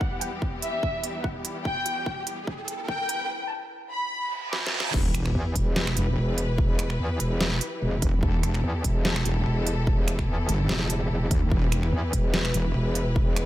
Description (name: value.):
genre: heavy wobble dubstep.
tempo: 146 BPM.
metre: 4/4.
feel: swing 54% on 16ths, half-time.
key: E minor.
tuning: A4 = 440 Hz.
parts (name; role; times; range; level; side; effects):
dark symphonic violin section; melody; 0.0-4.9 s; E5 to D6; -30 LUFS; left 1 dB; low-pass filter, ping-pong delay.
clear symphonic string section; sustained chords; 0.0-13.5 s; E2 to B4; -34 LUFS; left 2 dB; vintage 12-bit sampler grit, sidechain pumping.
electronic kick drum; drums; 0.0-13.2 s; none; -26 LUFS; equal; studio ambience.
riser, reverse cymbal and sub drop; sound effects; 0.5-6.6 s; none; -37 LUFS; right 2 dB; none.
warbly tape-like pad; texture; 0.0-3.3 s; E4 to B5; -43 LUFS; right 1 dB; chorus, built-in reverb, sidechain pumping.
dubstep drum kit; drums; 0.2-13.5 s; crash cymbal, finger snaps, hi-hat, snare drum; -29 LUFS; right 1 dB; studio ambience.
wobble bass; bass; 4.9-12.7 s; E1 to D2; -24 LUFS; equal; chorus, overdrive.
metallic wobble bass; bass; 5.3-13.5 s; E1 to E2; -26 LUFS; equal; distortion, chorus, overdrive.
room: digital ambience.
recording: high-pass filter.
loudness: -24 LUFS.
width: side -14 dB against mid.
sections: 0.0-4.9 A section; 4.9-13.5 B section.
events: build-up 0.0-4.9; filter sweep 0.0-4.9; riser 0.5-3.3; drum fill 1.7-3.3, 4.5-4.9; reverse cymbal 4.3-4.9; drop 4.9-13.5; impact 4.9-6.6.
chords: 0.0 Em.